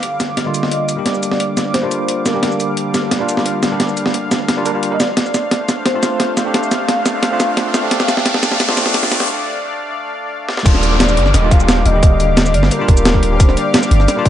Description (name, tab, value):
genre	liquid drum and bass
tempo	175 BPM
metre	4/4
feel	straight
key	Eb lydian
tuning	A4 = 440 Hz
part	warm velvety synth lead	melody	0.0-14.3 s	Bb4 to F5	-22 LUFS	equal	chorus, tape echo
part	warm analog pad	sustained chords	0.0-14.3 s	D3 to D6	-23 LUFS	left 1 dB	chorus, tremolo, sidechain pumping
part	breakbeat sampler-style drum kit	drums	0.0-14.3 s	crash cymbal, hi-hat, shaker, snare drum	-17 LUFS	equal	none
part	bell-like tine electric piano	accompaniment	0.4-14.3 s	D3 to Bb4	-20 LUFS	equal	medium stereo tremolo
part	riser and downlifter	sound effects	6.5-13.4 s	none	-23 LUFS	equal	none
part	long sustained 808-style bass	bass	10.7-14.1 s	Eb1 to G1	-15 LUFS	equal	none
part	electronic kick drum	drums	10.7-14.3 s	none	-10 LUFS	equal	none
room	light reverb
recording	high-pass filter, nothing above 10.4 kHz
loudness	-13 LUFS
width	side -11 dB against mid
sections	0.0-10.7 A section; 10.7-14.3 B section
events	build-up 0.0-10.7; drum fill 0.0-9.3, 10.5; filter sweep 0.0-10.7; riser 6.5-9.3; break 9.3-10.7; drop 10.7-14.3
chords	0.0 Ebmaj9 (rootless); 5.2 Dm7; 10.7 Ebmaj9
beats	0.03 0.37 0.71 | 1.06 1.40 1.74 2.08 | 2.43 2.77 3.11 3.46 | 3.80 4.14 4.49 4.83 | 5.17 5.51 5.86 6.20 | 6.54 6.88 7.23 7.57 | 7.91 8.26 8.60 8.94 | 9.29 9.63 9.97 10.31 | 10.66 11.00 11.34 11.69 | 12.03 12.37 12.71 13.06 | 13.40 13.74 14.09